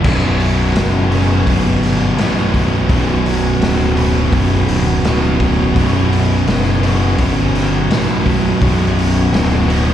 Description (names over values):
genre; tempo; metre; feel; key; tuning
stoner and doom metal; 84 BPM; 4/4; straight; unclear; A4 = 440 Hz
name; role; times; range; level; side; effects
tonewheel organ; sustained chords; 0.0-9.9 s; B3 to C#5; -27 LUFS; equal; overdrive, chorus vibrato, slow rotary speaker
cranked stack guitar; riff; 0.0-9.9 s; B1 to B2; -22 LUFS; equal; overdrive
thick fuzz guitar; riff; 0.0-9.9 s; B1 to B2; -19 LUFS; left 6 dB; distortion, slapback echo
thick fuzz guitar; riff; 0.0-9.9 s; B1 to B2; -19 LUFS; right 8 dB; distortion
fuzz fingered electric bass; bass; 0.0-9.9 s; B0 to A1; -17 LUFS; equal; overdrive, tube saturation
raw garage drum kit; drums; 0.0-9.9 s; crash cymbal, hi-hat, kick drum, snare drum; -19 LUFS; equal; none
room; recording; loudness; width
studio ambience; live gig heard through the venue's PA, recital hall reverb; -12 LUFS; side -10 dB against mid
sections
0.0-9.9 A section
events
none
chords
0.0 Bm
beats
| 0.05 0.76 1.47 2.19 | 2.90 3.61 4.32 5.04 | 5.75 6.46 7.18 7.89 | 8.61 9.32